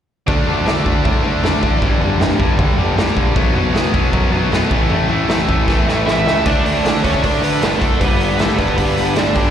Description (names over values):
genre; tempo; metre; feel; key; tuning
punk rock; 155 BPM; 4/4; straight; D major; A4 = 440 Hz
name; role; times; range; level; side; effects
cranked stack guitar; riff; 0.3-9.5 s; G2 to D4; -19 LUFS; left 8 dB; overdrive, slapback echo
distorted electric guitar; riff; 0.3-9.5 s; G2 to D4; -22 LUFS; right 15 dB; overdrive, slapback echo
fuzz picked electric bass; bass; 0.3-9.5 s; F#1 to D3; -21 LUFS; equal; overdrive
raw garage drum kit; drums; 0.3-9.4 s; crash cymbal, hi-hat, kick drum, snare drum, toms; -17 LUFS; equal; none
bluesy overdriven lead guitar; melody; 6.1-9.5 s; A3 to E5; -20 LUFS; right 4 dB; distortion, slapback echo
room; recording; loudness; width
little or no reverb; live gig heard through the venue's PA, recital hall reverb; -13 LUFS; side -9 dB against mid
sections
0.3-6.5 A section; 6.5-9.5 B section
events
drum fill 5.7-6.5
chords
0.3 D5; 1.8 G5; 3.4 B5; 4.7 A5; 6.5 D; 8.0 G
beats
| 0.27 0.66 1.04 1.43 | 1.81 2.20 2.58 2.97 | 3.36 3.74 4.13 4.52 | 4.90 5.29 5.68 6.06 | 6.45 6.84 7.23 7.61 | 8.00 8.39 8.77 9.16